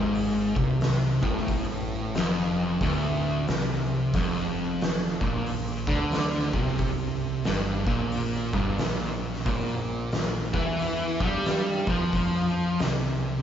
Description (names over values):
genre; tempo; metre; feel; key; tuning
stoner and doom metal; 90 BPM; 4/4; swing 61% on 8ths; unclear; A4 = 440 Hz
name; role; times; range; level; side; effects
fuzz guitar; riff; 0.0-13.4 s; D2 to G3; -26 LUFS; equal; distortion
growling picked electric bass; bass; 0.0-13.4 s; D1 to G2; -35 LUFS; equal; overdrive
oversized low-tuned drum kit; drums; 0.2-13.0 s; hi-hat, kick drum, snare drum; -29 LUFS; equal; none
room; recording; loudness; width
moderate large studio reverb, RT60 1.2 s; band playing live in one room, nothing above 7.6 kHz; -24 LUFS; side -9 dB against mid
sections
0.0-13.4 A section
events
none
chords
0.0 Dm; 4.1 F5; 9.5 Bb5